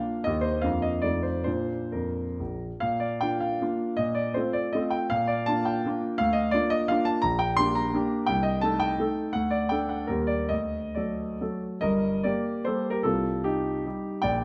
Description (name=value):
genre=classical, romantic triple-time dance for piano with dotted rhythms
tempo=122-185 BPM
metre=3/4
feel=rubato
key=Bb major, G minor from 7.2 s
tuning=A4 = 440 Hz
part: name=clear concert grand piano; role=solo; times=0.0-14.4 s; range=G1 to C6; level=-27 LUFS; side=equal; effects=none
room=moderate recital hall reverb, RT60 1.6 s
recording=close, detailed microphones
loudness=-27 LUFS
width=mono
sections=0.0-2.8 A section; 2.8-11.8 A section; 11.8-14.4 B section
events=none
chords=0.3 Eb; 0.6 Bb/F; 1.0 F7; 1.5 Bb; 4.0 F/Bb; 5.1 Bb; 6.2 Bb/D; 7.2 Gm/Bb; 8.3 Am7b5/C; 9.3 D5; 10.1 Eb; 10.5 D; 11.8 Gm; 13.0 Cm